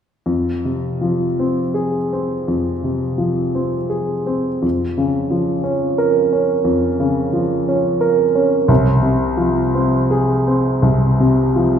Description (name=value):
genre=classical, romantic nocturne for solo piano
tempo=53-61 BPM (dotted quarters)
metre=12/8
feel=rubato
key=F minor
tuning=A4 = 438 Hz
part: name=clear grand piano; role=solo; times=0.3-11.8 s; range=C2 to Bb4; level=-15 LUFS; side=equal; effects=none
room=wet recital hall reverb, RT60 1.6 s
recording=recorded in a church or concert hall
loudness=-15 LUFS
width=side -8 dB against mid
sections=0.3-11.8 A section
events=none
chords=0.3 Fm; 4.6 Bbm/F; 8.7 Fm/C